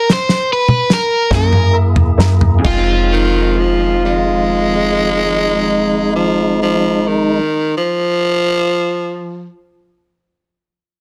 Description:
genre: slow blues.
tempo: 43-51 BPM (dotted quarters).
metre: 12/8.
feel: straight.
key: F minor.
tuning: A4 = 440 Hz.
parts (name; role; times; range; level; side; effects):
overdriven electric guitar; melody; 0.0-7.4 s; F4 to C5; -19 LUFS; equal; plate reverb.
warm soul drum kit; drums; 0.1-2.9 s; crash cymbal, kick drum, snare drum, toms; -18 LUFS; equal; none.
electric guitar through a small old amp; accompaniment; 1.3-7.6 s; F2 to Db4; -25 LUFS; equal; harmonic tremolo, plate reverb.
warm upright piano; accompaniment; 1.3-7.4 s; Ab4 to Bb5; -30 LUFS; equal; plate reverb.
tonewheel organ; sustained chords; 1.3-7.4 s; Ab3 to Ab4; -22 LUFS; equal; slow rotary speaker, plate reverb.
woody FM bass; bass; 1.3-7.4 s; F1 to Gb2; -18 LUFS; equal; none.
growling tenor saxophone; second line; 3.1-9.5 s; Eb3 to Ab3; -18 LUFS; equal; plate reverb.
room: moderate club reverb, RT60 0.5 s.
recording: dense, heavily limited modern master.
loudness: -14 LUFS.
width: mono.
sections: 0.0-2.6 A section; 2.6-8.2 B section.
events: slowing down 0.0-2.6; stop 0.0-1.3; drum fill 0.1-2.6; upright piano fill 1.3-2.6.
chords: 0.0 N.C.; 1.3 Gb7; 2.6 Fm7.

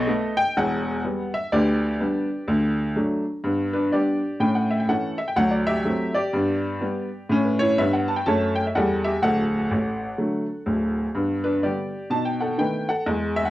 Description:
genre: jazz, stride piano.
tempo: 125 BPM.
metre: 4/4.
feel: swing 61% on 8ths.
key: G major.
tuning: A4 = 440 Hz.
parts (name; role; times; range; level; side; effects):
clear upright piano; solo; 0.0-13.5 s; D1 to A5; -21 LUFS; equal; none.
room: moderate club reverb, RT60 0.8 s.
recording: worn, warbling old tape, cassette tape, warbly pitch drift.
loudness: -21 LUFS.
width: side -15 dB against mid.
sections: 0.0-3.4 A section; 3.4-13.5 B section.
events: none.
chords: 0.0 B7; 0.6 Em; 1.5 G/D; 2.5 D; 3.4 G; 4.4 A; 5.4 D7; 6.3 G; 7.3 A7; 9.2 D; 11.2 G; 12.1 B7.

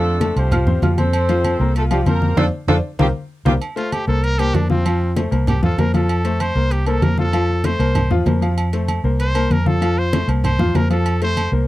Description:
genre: latin, salsa.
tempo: 193 BPM.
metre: 4/4.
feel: straight.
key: F major.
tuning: A4 = 440 Hz.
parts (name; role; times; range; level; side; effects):
warm horn section; melody; 0.0-3.5 s; G3 to C5; -22 LUFS; equal; none.
clear upright piano; accompaniment; 0.0-11.7 s; F3 to F6; -22 LUFS; left 3 dB; none.
vintage muted fingered electric bass; bass; 0.0-11.7 s; C2 to F2; -18 LUFS; equal; none.
congas; percussion; 0.1-11.7 s; none; -22 LUFS; left 1 dB; none.
agogo bells and timbales; percussion; 0.2-11.5 s; none; -28 LUFS; right 5 dB; none.
brilliant trumpet; melody; 3.8-11.5 s; C4 to C5; -24 LUFS; equal; none.
room: little or no reverb.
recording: dry, close 1970s-style studio recording.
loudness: -15 LUFS.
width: side -16 dB against mid.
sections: 0.0-3.6 A section; 3.6-11.7 B section.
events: band accent 2.4-3.6; drum fill 3.0-3.6; trumpet solo 3.6-11.7.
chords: 0.0 F6; 0.5 Csus4; 1.1 F; 2.4 F6; 3.0 C7sus4; 3.6 Gm11; 4.2 C7sus4; 4.9 F; 5.5 C7sus4; 6.1 F; 6.7 C7sus4; 7.3 F; 8.0 C7sus4; 8.6 F; 9.2 C7sus4; 9.8 F; 10.4 C7sus4; 11.1 F.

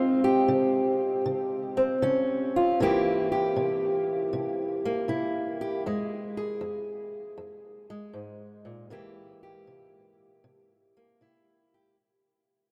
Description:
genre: blues.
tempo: 78 BPM.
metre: 4/4.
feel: swing 68% on 8ths.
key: unclear.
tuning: A4 = 441 Hz.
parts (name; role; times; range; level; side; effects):
fingerpicked old ladder-braced acoustic guitar; solo; 0.0-12.0 s; F2 to Ab4; -28 LUFS; equal; none.
room: wet huge ambient reverb, RT60 8.9 s.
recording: in a vast, echoing space.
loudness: -27 LUFS.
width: mono.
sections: 0.0-12.0 A section.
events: fade-out 0.0-12.0.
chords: 0.0 Dbmaj7; 2.8 C7; 5.9 Fm; 8.9 C7.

